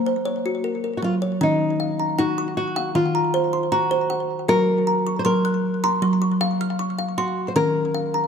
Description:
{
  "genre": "world meditative, meditative tuned percussion",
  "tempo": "78 BPM",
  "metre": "4/4",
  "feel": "straight",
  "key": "unclear",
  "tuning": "A4 = 440 Hz",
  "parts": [
    { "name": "kalimba", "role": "arpeggios", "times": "0.0-8.3 s", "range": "Eb3 to Gb6", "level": "-21 LUFS", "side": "equal", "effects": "ping-pong delay" },
    { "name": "flamenco guitar", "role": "melody", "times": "1.0-8.3 s", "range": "Eb4 to C5", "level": "-23 LUFS", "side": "left 1 dB", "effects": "none" }
  ],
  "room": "wet echo chamber reverb, RT60 2.1 s",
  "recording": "dark, warm production",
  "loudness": "-19 LUFS",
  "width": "side -7 dB against mid",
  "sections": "0.0-1.4 A section; 1.4-8.3 B section",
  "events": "none",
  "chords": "0.0 Bbm; 1.4 Ebm; 4.5 Gb; 7.6 Eb5",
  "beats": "0.64 | 1.41 2.18 2.95 3.72 | 4.49 5.26 6.02 6.79 | 7.56"
}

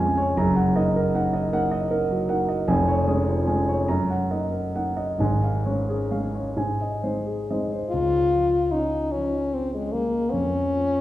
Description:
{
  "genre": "classical, romantic duo for French horn and grand piano",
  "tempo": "43-53 BPM (dotted quarters)",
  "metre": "6/8",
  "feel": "rubato",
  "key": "Db major",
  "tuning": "A4 = 440 Hz",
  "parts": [
    { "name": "dark concert grand piano", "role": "accompaniment", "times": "0.0-11.0 s", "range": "F1 to Bb5", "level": "-22 LUFS", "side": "equal", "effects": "none" },
    { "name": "warm French horn", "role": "melody", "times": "7.9-11.0 s", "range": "Ab3 to F4", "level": "-22 LUFS", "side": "left 2 dB", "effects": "none" }
  ],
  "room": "wet recital hall reverb, RT60 1.6 s",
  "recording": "heard from further back in the room",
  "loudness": "-21 LUFS",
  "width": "side -14 dB against mid",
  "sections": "0.0-7.9 A section; 7.9-11.0 B section",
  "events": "none",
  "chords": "0.4 Ebm/Gb; 2.7 Db/F; 3.9 Ebm/Gb; 5.2 Db/Ab; 6.6 Ab; 7.9 Db; 10.3 Db/F",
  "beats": "| 0.36 1.52 | 2.67 3.88 | 5.20 6.56 | 7.90 9.12 | 10.33"
}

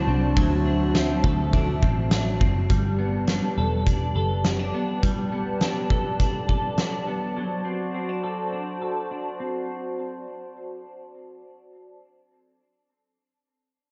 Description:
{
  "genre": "dream pop",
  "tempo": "103 BPM",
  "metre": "4/4",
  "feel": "straight",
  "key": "D mixolydian",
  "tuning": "A4 = 439 Hz",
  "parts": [
    { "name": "warbly nostalgic lead", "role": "melody", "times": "0.0-2.1 s", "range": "D4 to E4", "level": "-31 LUFS", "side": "equal", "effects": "chorus, tremolo, tape echo" },
    { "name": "hollow soft pad", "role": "sustained chords", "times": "0.0-12.0 s", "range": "F#4 to A5", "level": "-33 LUFS", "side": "equal", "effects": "chorus, low-pass filter" },
    { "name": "semi-hollow electric guitar", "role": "arpeggios", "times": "0.0-10.2 s", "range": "F#3 to A4", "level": "-32 LUFS", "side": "equal", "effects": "ensemble chorus, low-pass filter, tape echo" },
    { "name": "vintage muted picked electric bass", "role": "bass", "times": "0.0-4.7 s", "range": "E1 to D2", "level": "-27 LUFS", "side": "equal", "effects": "none" },
    { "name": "oversized low-tuned drum kit", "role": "drums", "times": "0.4-6.9 s", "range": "hi-hat, kick drum, ride cymbal, snare drum, tambourine", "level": "-27 LUFS", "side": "equal", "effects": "none" }
  ],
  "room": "moderate lush hall reverb, RT60 1.6 s, studio ambience",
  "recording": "dark, warm production, nothing above 7.6 kHz",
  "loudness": "-24 LUFS",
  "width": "mono",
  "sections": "0.0-2.7 A section; 2.7-12.0 B section",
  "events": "filter sweep 2.7-12.0",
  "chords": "0.0 D7; 2.7 Gadd9; 7.4 D7",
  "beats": "| 0.37 0.95 1.53 2.12 | 2.70 3.28 3.86 4.45 | 5.03 5.61 6.20 6.78 | 7.36 7.94 8.53 9.11 | 9.69 10.27 10.86 11.44"
}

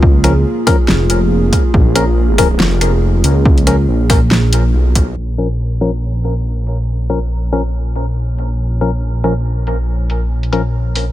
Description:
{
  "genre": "deep dubstep",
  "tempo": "140 BPM",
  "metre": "4/4",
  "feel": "swing 56% on 16ths, half-time",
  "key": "Bb minor",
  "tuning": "A4 = 440 Hz",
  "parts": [
    { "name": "dark analog pad", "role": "sustained chords", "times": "0.0-11.1 s", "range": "Bb3 to Db5", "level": "-22 LUFS", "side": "right 1 dB", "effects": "chorus" },
    { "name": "dark detuned saw bass", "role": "bass", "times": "0.0-11.1 s", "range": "F1 to Db2", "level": "-14 LUFS", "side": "equal", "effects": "none" },
    { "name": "electronic kick drum", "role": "drums", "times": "0.0-5.1 s", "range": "none", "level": "-13 LUFS", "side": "equal", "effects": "overdrive, studio reverb" },
    { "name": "percussive organ stab", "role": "stabs", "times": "0.2-10.6 s", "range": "F3 to Bb4", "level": "-20 LUFS", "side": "left 3 dB", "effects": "chorus, dub echo" },
    { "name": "deep house drum kit", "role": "drums", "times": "0.2-11.1 s", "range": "finger snaps, hi-hat, snare drum", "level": "-17 LUFS", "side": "equal", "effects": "overdrive, studio reverb" }
  ],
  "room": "digital ambience",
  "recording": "low-pass filter",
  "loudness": "-12 LUFS",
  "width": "side -14 dB against mid",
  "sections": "0.0-5.2 A section; 5.2-11.1 B section",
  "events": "drop 0.0-5.2; filter sweep on synth stab 5.2-11.1; filter sweep 5.2-11.1",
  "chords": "0.0 Bbm",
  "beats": "| 0.03 0.46 0.88 1.31 | 1.74 2.17 2.60 3.03 | 3.46 3.88 4.31 4.74 | 5.17 5.60 6.03 6.46 | 6.88 7.31 7.74 8.17 | 8.60 9.03 9.46 9.88 | 10.31 10.74"
}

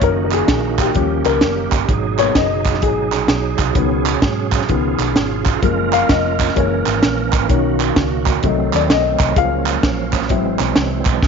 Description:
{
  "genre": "uptempo gospel",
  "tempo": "128 BPM",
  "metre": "4/4",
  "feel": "swing 65% on 8ths",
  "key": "F# major",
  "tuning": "A4 = 440 Hz",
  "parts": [
    { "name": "dark upright piano", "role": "accompaniment", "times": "0.0-11.0 s", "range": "D#3 to E#5", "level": "-20 LUFS", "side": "left 13 dB", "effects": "none" },
    { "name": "bright tonewheel organ", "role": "sustained chords", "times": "0.0-11.3 s", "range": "B2 to A#4", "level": "-21 LUFS", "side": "right 11 dB", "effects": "slow rotary speaker, chorus vibrato" },
    { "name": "hollow-body short-scale fingered electric bass", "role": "bass", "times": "0.0-11.3 s", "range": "E#1 to G#2", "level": "-23 LUFS", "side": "equal", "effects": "none" },
    { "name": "tight funk drum kit", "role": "drums", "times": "0.0-11.3 s", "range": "hi-hat, kick drum, snare drum", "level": "-18 LUFS", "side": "right 1 dB", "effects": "none" },
    { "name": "group handclap", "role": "percussion", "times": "0.3-11.1 s", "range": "none", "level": "-24 LUFS", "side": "right 13 dB", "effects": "none" }
  ],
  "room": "light reverb, small room ambience",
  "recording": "1960s-style stereo with parts hard left and right, nothing above 7.5 kHz",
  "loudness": "-14 LUFS",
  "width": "side -6 dB against mid",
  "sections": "0.0-11.3 A section",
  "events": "upright piano solo 0.0-11.3",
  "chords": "0.0 F#69; 1.0 D#7; 1.9 G#m7; 3.8 C#7sus4; 4.7 C#7; 5.6 F#maj7; 6.6 F#7; 7.5 Bmaj7; 8.4 Cdim7; 9.4 F#maj7/C#; 10.3 G#7alt",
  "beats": "| 0.02 0.49 0.95 1.42 | 1.89 2.36 2.83 3.29 | 3.76 4.23 4.69 5.16 | 5.63 6.09 6.56 7.03 | 7.50 7.96 8.43 8.90 | 9.36 9.83 10.29 10.76 | 11.22"
}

